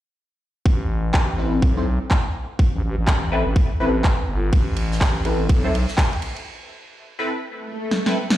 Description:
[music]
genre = bass house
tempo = 124 BPM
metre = 4/4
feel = swing 61% on 16ths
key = A minor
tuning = A4 = 440 Hz
[part]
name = growling FM bass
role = bass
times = 0.7-5.9 s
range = G1 to B1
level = -22 LUFS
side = equal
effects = sidechain pumping
[part]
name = electronic kick drum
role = drums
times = 0.7-6.1 s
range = none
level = -18 LUFS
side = equal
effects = overdrive, small room ambience
[part]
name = electronic handclaps and snare drum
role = drums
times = 1.1-8.4 s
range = none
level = -24 LUFS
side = equal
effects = overdrive, small room ambience
[part]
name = band-passed chord stab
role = stabs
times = 1.4-8.2 s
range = C4 to C5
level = -25 LUFS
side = left 1 dB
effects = phaser, ensemble chorus, sidechain pumping, dub echo
[part]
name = huge arena drum kit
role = drums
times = 4.5-6.5 s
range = ride cymbal, snare drum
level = -34 LUFS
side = right 2 dB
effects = sidechain pumping on cymbals, high-pass filter on cymbals, small room ambience, high-pass filter on snare, high-pass filter on room
[part]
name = swell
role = sound effects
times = 7.6-8.4 s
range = none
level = -27 LUFS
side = left 1 dB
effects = none
[sound]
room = light reverb, small room ambience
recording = played on a big sound system in a bare room, stone room reverb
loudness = -18 LUFS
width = side -14 dB against mid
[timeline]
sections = 0.7-8.4 A section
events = filter sweep on synth stab 0.7-8.4; break 6.5-8.4; swell 7.6-8.4; drum fill 7.9-8.4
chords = 0.7 Amadd9

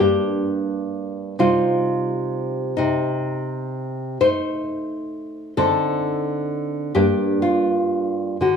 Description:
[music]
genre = romantic duo for nylon-string guitar and classical guitar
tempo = 43 BPM (dotted quarters)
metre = 6/8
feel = rubato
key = G minor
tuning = A4 = 441 Hz
[part]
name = flamenco guitar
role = melody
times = 0.0-8.6 s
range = Eb4 to C5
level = -21 LUFS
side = left 3 dB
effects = none
[part]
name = nylon-string guitar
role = accompaniment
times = 0.0-8.6 s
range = G2 to Eb4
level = -23 LUFS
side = right 3 dB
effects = none
[sound]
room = wet recital hall reverb, RT60 1.4 s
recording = none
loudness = -20 LUFS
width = side -6 dB against mid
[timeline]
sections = 0.0-8.6 A section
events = none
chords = 0.0 Gm; 1.4 Cm; 2.8 Adim/C; 5.6 D5; 7.0 Gm

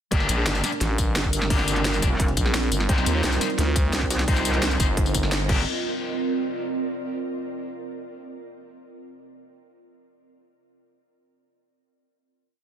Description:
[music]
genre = dark technical drum and bass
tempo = 173 BPM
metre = 4/4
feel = straight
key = unclear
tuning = A4 = 439 Hz
[part]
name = dark analog pad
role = sustained chords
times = 0.1-5.7 s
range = G3 to C5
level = -33 LUFS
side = right 2 dB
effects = chorus, sidechain pumping
[part]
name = distorted electric guitar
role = stabs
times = 0.1-5.6 s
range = Bb3 to C5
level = -30 LUFS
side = left 3 dB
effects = distortion, tape echo
[part]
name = metallic wobble bass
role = bass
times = 0.1-5.7 s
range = F1 to C2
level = -26 LUFS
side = equal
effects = chorus, tube saturation
[part]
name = drum and bass drum kit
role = drums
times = 0.1-5.6 s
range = crash cymbal, hi-hat, snare drum, tambourine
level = -27 LUFS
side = left 1 dB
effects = studio reverb
[part]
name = electronic kick drum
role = drums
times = 0.1-5.6 s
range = none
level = -23 LUFS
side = equal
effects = overdrive, studio reverb
[part]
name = jungle sampler-style drum kit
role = drums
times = 0.1-5.4 s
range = hi-hat, snare drum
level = -37 LUFS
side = equal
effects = none
[part]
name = ethereal airy pad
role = texture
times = 1.1-7.0 s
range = C4 to Eb5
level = -30 LUFS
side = right 3 dB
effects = ensemble chorus, built-in reverb, sidechain pumping
[part]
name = growling FM bass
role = bass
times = 0.3-5.5 s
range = G1 to Eb2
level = -24 LUFS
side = equal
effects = tube saturation
[sound]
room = light reverb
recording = dense, heavily limited modern master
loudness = -21 LUFS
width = side -9 dB against mid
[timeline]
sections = 0.1-5.7 drop; 5.7-7.1 final chord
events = drop 0.1-5.7; band accent 5.3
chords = 0.1 Gm; 2.9 Cm; 5.5 Gm; 5.7 C9sus4

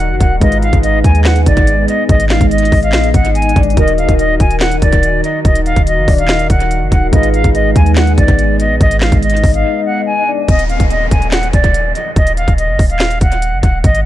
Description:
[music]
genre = hip hop, trap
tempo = 143 BPM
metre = 4/4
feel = half-time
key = Eb harmonic minor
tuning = A4 = 440 Hz
[part]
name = silver concert flute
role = melody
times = 0.0-14.0 s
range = D5 to Ab5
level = -16 LUFS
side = equal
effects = low-pass filter, dub echo
[part]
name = soft octave-layered synth lead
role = second line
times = 0.0-10.5 s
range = D5 to Gb5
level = -23 LUFS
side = left 8 dB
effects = chorus, tremolo, dub echo
[part]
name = warbly lo-fi synth keys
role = accompaniment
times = 0.0-10.5 s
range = Eb3 to Cb5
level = -19 LUFS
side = right 1 dB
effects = chorus, phaser, low-pass filter, dub echo
[part]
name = dark analog pad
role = sustained chords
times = 0.0-10.4 s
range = Eb3 to Bb4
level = -23 LUFS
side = left 1 dB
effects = chorus
[part]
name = clean 808-style bass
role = bass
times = 0.0-14.1 s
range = Eb1 to Eb2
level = -14 LUFS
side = equal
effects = none
[part]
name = downlifter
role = sound effects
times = 0.4, 10.5-13.8 s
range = none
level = -27 LUFS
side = left 2 dB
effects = none
[part]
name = trap drum kit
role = drums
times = 0.2-14.0 s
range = handclaps, hi-hat, kick drum, snare drum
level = -14 LUFS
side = equal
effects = vintage 12-bit sampler grit
[sound]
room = little or no reverb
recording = echo-heavy mix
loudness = -9 LUFS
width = side -13 dB against mid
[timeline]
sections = 0.0-10.5 A section; 10.5-14.1 B section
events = break 9.6-10.5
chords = 0.4 Abm; 3.8 Ebm; 7.1 Abm; 10.5 Ebm

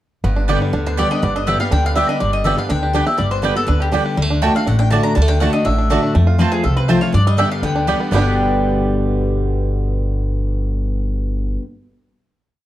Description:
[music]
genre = bluegrass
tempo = 244 BPM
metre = 4/4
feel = straight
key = G mixolydian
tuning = A4 = 442 Hz
[part]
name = picked steel-string acoustic guitar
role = accompaniment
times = 0.2-11.6 s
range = F2 to G4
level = -20 LUFS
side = left 2 dB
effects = none
[part]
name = bluegrass banjo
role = arpeggios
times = 0.2-11.6 s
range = D3 to G4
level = -24 LUFS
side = right 4 dB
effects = none
[part]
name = upright bass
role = bass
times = 0.2-11.6 s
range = G1 to G2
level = -18 LUFS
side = equal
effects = none
[part]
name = mandolin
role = stabs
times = 0.5-11.6 s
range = A3 to A5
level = -23 LUFS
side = right 6 dB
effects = none
[part]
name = mandolin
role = melody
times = 0.9-11.6 s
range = G4 to Bb5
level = -22 LUFS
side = left 2 dB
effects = none
[sound]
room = light reverb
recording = dark, warm production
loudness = -15 LUFS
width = side -14 dB against mid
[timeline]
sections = 0.2-8.1 A section; 8.1-10.1 final chord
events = none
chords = 0.2 G; 4.2 D; 6.1 F; 7.1 G

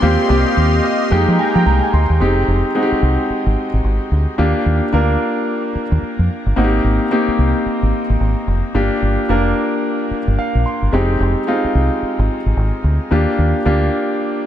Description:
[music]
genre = R&B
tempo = 110 BPM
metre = 4/4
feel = swing 61% on 16ths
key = F dorian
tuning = A4 = 440 Hz
[part]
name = warm concert grand piano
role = accompaniment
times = 0.0-14.5 s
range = Ab3 to C6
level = -17 LUFS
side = equal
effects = shimmer reverb
[part]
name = sweeping resonant pad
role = sustained chords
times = 0.0-2.2 s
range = Ab3 to C6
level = -23 LUFS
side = equal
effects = chorus, shimmer reverb
[part]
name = deep dub fingered electric bass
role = bass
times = 0.0-13.9 s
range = F1 to F3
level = -16 LUFS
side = equal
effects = none
[sound]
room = light reverb, small room ambience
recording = dark, warm production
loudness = -14 LUFS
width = side -11 dB against mid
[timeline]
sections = 0.0-2.2 A section; 2.2-14.5 B section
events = grand piano fill 0.6-2.2, 10.1-10.9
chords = 0.0 Eb69; 1.1 Fm11; 2.2 Fm7; 4.4 Ebmaj7; 6.6 Abmaj7; 8.7 Gm7; 10.9 Fm7; 13.1 Ebmaj7

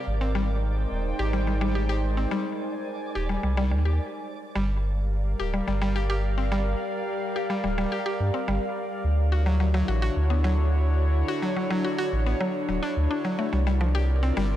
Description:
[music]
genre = IDM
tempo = 107 BPM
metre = 4/4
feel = straight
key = G phrygian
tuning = A4 = 440 Hz
[part]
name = warbly tape-like pad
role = sustained chords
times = 0.0-14.6 s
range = C3 to Ab5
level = -30 LUFS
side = equal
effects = chorus, built-in reverb, vintage 12-bit sampler grit
[part]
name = twinkling granular texture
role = texture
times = 0.0-4.0 s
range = D5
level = -42 LUFS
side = right 4 dB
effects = built-in reverb
[part]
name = warm sub bass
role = bass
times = 0.1-14.6 s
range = D1 to G2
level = -24 LUFS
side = equal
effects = none
[part]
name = mallet-like synth pluck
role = arpeggios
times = 0.2-14.5 s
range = F3 to G4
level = -30 LUFS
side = left 2 dB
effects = chorus, analog delay
[sound]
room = light reverb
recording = none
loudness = -23 LUFS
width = side -12 dB against mid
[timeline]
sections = 0.0-4.6 A section; 4.6-14.6 B section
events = stop 4.0-4.6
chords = 0.1 Abmaj9; 4.6 Gm7; 9.0 Dmaj9; 13.5 C9sus4

